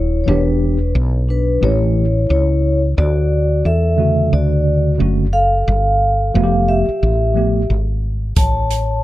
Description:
hip hop, jazz-hop; 89 BPM; 4/4; swing 58% on 16ths; A4 = 440 Hz
vibraphone with soft mallets; melody; 0.0-9.0 s; B4 to A5; -20 LUFS; equal
vibraphone with soft mallets; second line; 0.0-9.0 s; D4 to C#5; -24 LUFS; left 4 dB
woody fretless electric bass; bass; 0.0-9.0 s; D#1 to E2; -16 LUFS; equal
tine electric piano; accompaniment; 0.3-7.6 s; C#3 to G4; -19 LUFS; right 1 dB; overdrive, fast stereo tremolo
open jazz drum kit; drums; 8.4-8.9 s; hi-hat, kick drum; -16 LUFS; equal
little or no reverb; -13 LUFS; side -15 dB against mid
0.0-9.0 A section
0.3 Em7; 1.6 A7; 3.0 Dmaj7; 5.7 G9; 8.4 A

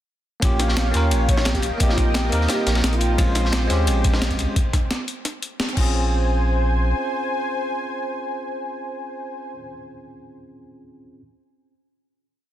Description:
liquid drum and bass; 174 BPM; 4/4; straight; Bb dorian; A4 = 440 Hz
bell-like tine electric piano; accompaniment; 0.4-11.2 s; Ab3 to Bb4; -28 LUFS; right 1 dB; digital delay
lush unison pad; sustained chords; 0.4-9.5 s; Bb4 to Ab5; -28 LUFS; equal; chorus
warm sub bass; bass; 0.4-6.9 s; Bb1 to Eb2; -21 LUFS; equal
breakbeat sampler-style drum kit; drums; 0.4-5.8 s; crash cymbal, hi-hat, snare drum; -27 LUFS; equal
crunchy breakbeat drum kit; drums; 0.4-4.5 s; ride cymbal, snare drum; -30 LUFS; equal; high-pass filter on cymbals, high-pass filter on snare, high-pass filter on room
electronic kick drum; drums; 0.4-5.8 s; -21 LUFS; equal
breathy flute-like synth lead; melody; 1.3-3.2 s; F4 to Db5; -30 LUFS; equal; lush chorus, cassette tape, digital delay
light reverb; dense, heavily limited modern master; -19 LUFS; side -12 dB against mid
0.4-5.9 drop; 5.9-8.7 final hit
drop 0.4-5.9; band accent 5.6
0.4 Eb7/Bb; 1.6 Cm7/Bb; 3.2 Bbm9; 4.6 N.C.; 5.8 Bbm9

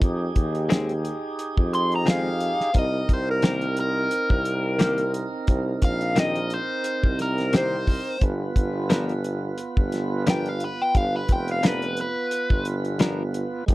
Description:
straight-eighth soul blues; 88 BPM; 4/4; swing 55% on 16ths; A4 = 439 Hz
tonewheel organ; accompaniment; 0.0-13.7 s; Ab3 to B4; -31 LUFS; right 4 dB; overdrive, slow rotary speaker
clear tuba; bass; 0.0-13.7 s; F1 to F2; -27 LUFS; equal
cloth-damped thuddy drum kit; drums; 0.0-13.7 s; hi-hat, kick drum, snare drum; -21 LUFS; equal
direct-recorded clean electric guitar; stabs; 0.7-13.2 s; Eb3 to A#4; -28 LUFS; left 5 dB
overdriven electric guitar; melody; 1.7-12.7 s; Bb4 to C6; -25 LUFS; left 1 dB; phaser
little or no reverb; dry, close 1970s-style studio recording; -21 LUFS; side -18 dB against mid
0.0-13.7 A section
0.0 Fm7; 2.8 Cm7; 8.2 G7#9

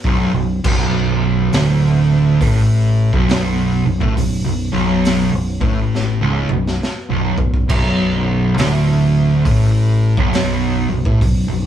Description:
stoner and doom metal; 68 BPM; 4/4; swing 64% on 8ths; B minor; A4 = 439 Hz
fuzz guitar; riff; 0.0-11.7 s; B1 to A2; -15 LUFS; right 1 dB; distortion
overdriven fingered electric bass; bass; 0.0-11.7 s; B0 to A1; -21 LUFS; equal
raw garage drum kit; drums; 0.0-11.5 s; crash cymbal, hi-hat, kick drum, snare drum, toms; -20 LUFS; equal
moderate stone room reverb, RT60 0.9 s; band playing live in one room, small room ambience; -13 LUFS; side -10 dB against mid
0.0-11.7 A section
drum fill 5.9-7.7
0.0 Bm

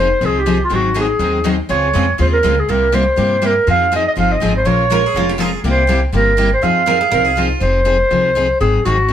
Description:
acoustic string swing (jazz manouche); 243 BPM; 4/4; swing 56% on 8ths; F minor; A4 = 444 Hz
growling clarinet; melody; 0.0-9.1 s; F4 to F5; -15 LUFS; right 1 dB
picked steel-string acoustic guitar; accompaniment; 0.0-9.1 s; C3 to Bb4; -20 LUFS; left 5 dB
picked steel-string acoustic guitar; accompaniment; 0.0-7.5 s; C3 to Bb4; -23 LUFS; right 4 dB
upright bass; bass; 0.0-9.1 s; F1 to G2; -19 LUFS; equal
picked steel-string acoustic guitar; second line; 4.9-7.6 s; F4 to Bb4; -20 LUFS; right 7 dB
light reverb; -12 LUFS; side -10 dB against mid
0.0-7.6 A section; 7.6-9.1 A section
0.0 Fm7; 0.7 Ab7; 1.7 Dbmaj7; 2.7 C7; 3.7 Fm7; 4.7 Bbm7; 5.6 C7; 6.6 Fm7; 8.6 Ab7

